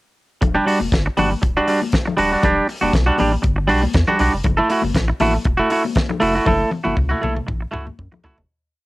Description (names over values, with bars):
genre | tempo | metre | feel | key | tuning
disco | 119 BPM | 4/4 | straight | E dorian | A4 = 443 Hz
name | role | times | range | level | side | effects
twangy electric guitar | accompaniment | 0.4-8.4 s | G3 to A4 | -17 LUFS | right 1 dB | cassette tape
saturated sub bass | bass | 0.4-8.5 s | D1 to F#2 | -22 LUFS | equal | none
warm soul drum kit | drums | 0.4-8.5 s | hi-hat, kick drum, snare drum, toms | -22 LUFS | equal | cassette tape
congas | percussion | 0.4-8.4 s | none | -27 LUFS | left 6 dB | none
room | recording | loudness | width
light reverb | home recording on cassette | -16 LUFS | side -20 dB against mid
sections
0.4-8.5 verse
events
fade-out 6.5-8.5; drum fill 6.5-8.5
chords
0.4 Em9; 4.5 F#m7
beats
| 0.41 0.92 1.42 1.93 | 2.43 2.94 3.44 3.94 | 4.45 4.95 5.46 5.96 | 6.47 6.98 7.48 7.99